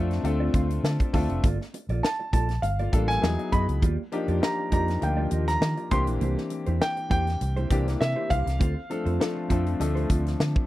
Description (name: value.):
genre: polished 1980s jazz-funk pop.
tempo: 100 BPM.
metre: 4/4.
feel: swing 54% on 16ths.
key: unclear.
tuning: A4 = 441 Hz.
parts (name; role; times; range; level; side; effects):
warm concert grand piano; melody; 0.0-10.4 s; E5 to C6; -30 LUFS; right 1 dB; slapback echo.
warm concert grand piano; accompaniment; 0.0-10.7 s; E3 to C6; -30 LUFS; left 3 dB; wide subtle chorus.
mellow electric guitar; riff; 0.0-10.6 s; Bb3 to F5; -34 LUFS; right 3 dB; wide subtle chorus.
vintage muted fingered electric bass; bass; 0.0-10.5 s; F1 to Eb3; -26 LUFS; equal; none.
tight funk drum kit; drums; 0.1-10.7 s; hi-hat, kick drum, snare drum; -26 LUFS; equal; none.
room: little or no reverb.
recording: dry, close 1970s-style studio recording.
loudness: -23 LUFS.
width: side -16 dB against mid.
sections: 0.0-10.7 A section.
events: grand piano fill 0.2-1.4.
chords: 0.0 Dm7; 1.4 Gm9; 3.2 Emaj9; 3.8 Ebmaj9; 5.9 C7; 8.6 Dm7.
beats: 0.24 0.84 | 1.44 2.03 2.63 3.23 | 3.83 4.42 5.02 5.62 | 6.22 6.81 7.41 8.01 | 8.61 9.20 9.80 10.40.